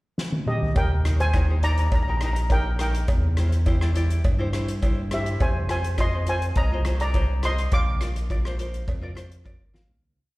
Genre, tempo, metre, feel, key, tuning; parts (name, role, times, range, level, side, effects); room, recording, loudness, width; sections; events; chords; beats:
calypso; 104 BPM; 4/4; straight; Eb major; A4 = 441 Hz
soft-mallet drum kit; drums; 0.2-10.0 s; hi-hat, kick drum, rim click, snare drum, toms; -26 LUFS; equal
steel pan; melody; 0.5-9.4 s; G4 to D6; -28 LUFS; equal; slapback echo, analog delay
smooth synth bass; bass; 0.8-10.0 s; G1 to G2; -24 LUFS; equal
cowbell; percussion; 0.8-9.6 s; -37 LUFS; right 2 dB; slapback echo
tenor ukulele; accompaniment; 1.1-10.0 s; Eb4 to F5; -34 LUFS; left 1 dB; slapback echo
small room ambience; live gig heard through the venue's PA, recital hall reverb; -21 LUFS; side -20 dB against mid
0.0-0.8 pickup bar; 0.8-10.0 chorus
drum fill 0.2-0.8, 9.7; fade-out 7.7-10.0
0.0 N.C.; 0.8 Eb; 3.1 C7/E; 5.4 Fm7; 7.7 Bbadd9
0.18 | 0.76 1.34 1.93 2.51 | 3.09 3.67 4.25 4.83 | 5.41 5.99 6.57 7.14 | 7.72 8.30 8.88 9.46